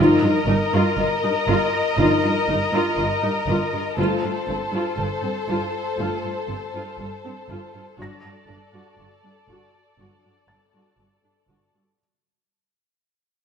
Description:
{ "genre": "cinematic, suspense film score", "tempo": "60 BPM", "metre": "4/4", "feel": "straight", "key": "unclear", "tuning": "A4 = 438 Hz", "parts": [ { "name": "muted symphonic violin section", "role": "melody", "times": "0.0-11.8 s", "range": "C5 to Eb5", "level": "-27 LUFS", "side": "left 4 dB", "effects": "none" }, { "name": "muted symphonic violin section", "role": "second line", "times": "0.0-11.7 s", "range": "A4 to Bb4", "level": "-26 LUFS", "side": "left 4 dB", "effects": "none" }, { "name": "muted symphonic viola section", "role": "accompaniment", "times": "0.0-11.8 s", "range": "C4 to F#4", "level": "-26 LUFS", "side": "right 2 dB", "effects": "none" }, { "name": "mellow French horn section", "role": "sustained chords", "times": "0.0-10.4 s", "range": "F3 to F4", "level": "-23 LUFS", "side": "left 2 dB", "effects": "none" }, { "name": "muted symphonic cello section", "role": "bass", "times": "0.0-11.8 s", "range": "G2", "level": "-27 LUFS", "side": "right 3 dB", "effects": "none" }, { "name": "muted symphonic double bass section", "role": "bass", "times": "0.0-11.6 s", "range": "G1", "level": "-28 LUFS", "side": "right 4 dB", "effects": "none" }, { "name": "felt-muted upright piano", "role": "texture", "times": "8.0-12.0 s", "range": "A6 to Bb6", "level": "-42 LUFS", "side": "left 1 dB", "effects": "none" } ], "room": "moderate scoring stage reverb, RT60 1.9 s", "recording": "none", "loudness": "-19 LUFS", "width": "side -7 dB against mid", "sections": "0.0-12.0 A section", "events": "fade-out 0.0-12.0", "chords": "0.0 Ebadd9/G; 4.0 F/G; 8.0 D/G", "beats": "0.98 1.98 2.98 | 3.98 4.98 5.98 6.98 | 7.98 8.98 9.98 10.98" }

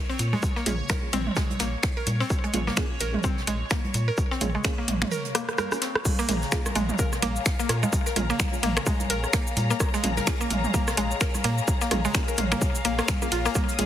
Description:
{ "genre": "minimal techno", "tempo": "128 BPM", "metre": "4/4", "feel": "swing 58% on 16ths", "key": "Bb minor", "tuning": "A4 = 441 Hz", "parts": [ { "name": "bubbling stepped-filter texture", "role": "texture", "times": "0.0-13.9 s", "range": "Db5 to F5", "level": "-37 LUFS", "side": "left 2 dB", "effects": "chorus, built-in reverb, sidechain pumping" }, { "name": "mallet-like synth pluck", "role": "riff", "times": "0.1-13.6 s", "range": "Ab3 to Bb4", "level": "-30 LUFS", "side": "equal", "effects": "chorus, sidechain pumping, ping-pong delay" }, { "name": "jazz brush drum kit", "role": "drums", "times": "0.1-13.9 s", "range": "hi-hat, shaker, snare drum", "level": "-39 LUFS", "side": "right 1 dB", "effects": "none" }, { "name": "rubbery square bass", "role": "bass", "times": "0.2-13.9 s", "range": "Bb1 to Bb2", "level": "-28 LUFS", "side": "equal", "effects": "sidechain pumping" }, { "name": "booming analog drum machine", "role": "drums", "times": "0.2-13.9 s", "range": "cabasa, crash cymbal, finger snaps, hi-hat, rim click", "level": "-29 LUFS", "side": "equal", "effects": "none" }, { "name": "organic electronic drum kit", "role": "percussion", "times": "0.3-13.9 s", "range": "congas, rim click, toms", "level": "-31 LUFS", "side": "right 2 dB", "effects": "overdrive, digital delay" }, { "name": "electronic kick drum", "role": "drums", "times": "0.4-13.7 s", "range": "none", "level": "-27 LUFS", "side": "equal", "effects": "overdrive" }, { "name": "wavetable chord stab", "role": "stabs", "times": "0.7-13.9 s", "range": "Bb3 to Ab4", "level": "-36 LUFS", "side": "right 2 dB", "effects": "digital delay" }, { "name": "swell", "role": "sound effects", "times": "5.3-6.1 s", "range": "none", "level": "-39 LUFS", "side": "right 3 dB", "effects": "none" }, { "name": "clear symphonic string section", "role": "texture", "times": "6.1-13.9 s", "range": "Ab4 to Eb6", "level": "-34 LUFS", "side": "left 4 dB", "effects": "sidechain pumping" } ], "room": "light reverb, digital ambience", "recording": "heavily compressed radio sound", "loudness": "-23 LUFS", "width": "side -11 dB against mid", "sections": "0.0-6.1 A section; 6.1-13.9 B section", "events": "swell 5.3-6.1; drum fill 5.3-6.1; drop 6.1-13.9", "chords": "0.0 Bbm; 6.1 Bbm7", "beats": "| 0.43 0.90 1.36 1.83 | 2.30 2.77 3.24 3.71 | 4.18 4.65 5.12 5.58 | 6.05 6.52 6.99 7.46 | 7.93 8.40 8.87 9.33 | 9.80 10.27 10.74 11.21 | 11.68 12.15 12.62 13.08 | 13.55" }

